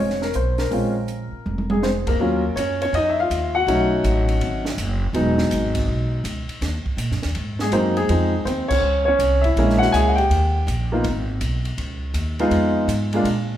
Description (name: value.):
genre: jazz piano trio.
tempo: 163 BPM.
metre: 4/4.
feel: swing 66% on 8ths.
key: Eb minor.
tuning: A4 = 439 Hz.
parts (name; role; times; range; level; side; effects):
warm baby grand piano; melody; 0.0-13.3 s; F3 to Ab5; -20 LUFS; equal; none.
upright bass; bass; 0.0-13.6 s; E1 to Bb2; -23 LUFS; equal; none.
compact cocktail drum kit; drums; 0.1-13.4 s; crash cymbal, hi-hat, kick drum, ride cymbal, snare drum, toms; -30 LUFS; right 2 dB; none.
room: moderate recital hall reverb, RT60 1.5 s.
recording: recorded in a church or concert hall.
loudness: -18 LUFS.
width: side -11 dB against mid.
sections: 0.0-2.2 A section; 2.2-13.6 B section.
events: drum fill 1.5-1.8; band accent 2.0, 8.6.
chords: 0.0 Bb7(no3); 2.2 Ebm7; 3.7 B7; 5.1 Emaj9; 6.6 Ebm; 7.4 Ab7; 8.1 Dbmaj7; 9.6 Bbm7b5; 10.3 Eb; 11.0 Abm; 12.5 Fm7b5.